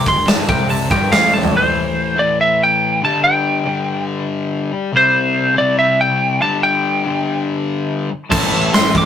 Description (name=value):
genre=hard rock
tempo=142 BPM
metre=4/4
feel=straight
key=unclear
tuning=A4 = 440 Hz
part: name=lightly driven lead guitar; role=melody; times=0.0-9.1 s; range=C5 to D6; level=-15 LUFS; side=equal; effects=none
part: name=cranked stack guitar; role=riff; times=0.0-1.5, 8.3-9.1 s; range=D2 to A4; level=-24 LUFS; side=right 1 dB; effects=overdrive
part: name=crunchy overdriven guitar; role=riff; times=0.0-1.5, 8.3-9.1 s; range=D2 to A3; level=-28 LUFS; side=right 6 dB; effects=none
part: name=sludgy distorted guitar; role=riff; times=0.0-9.1 s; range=D2 to C4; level=-20 LUFS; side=left 3 dB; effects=overdrive
part: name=modern bright picked electric bass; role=bass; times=0.0-1.5, 8.3-9.1 s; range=D1 to C2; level=-23 LUFS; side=right 1 dB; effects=none
part: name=big rock drum kit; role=drums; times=0.1-1.5, 8.3-9.0 s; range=crash cymbal, hi-hat, kick drum, snare drum, toms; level=-16 LUFS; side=equal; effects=none
room=moderate studio reverb, RT60 0.5 s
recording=rough rehearsal-room recording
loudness=-13 LUFS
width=side -9 dB against mid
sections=0.0-1.5 A section; 1.5-9.1 B section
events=lead electric guitar solo 0.0-1.5; drum fill 1.3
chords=0.0 D5; 1.5 Am; 3.0 G5; 4.9 C5; 6.4 G5; 8.3 Am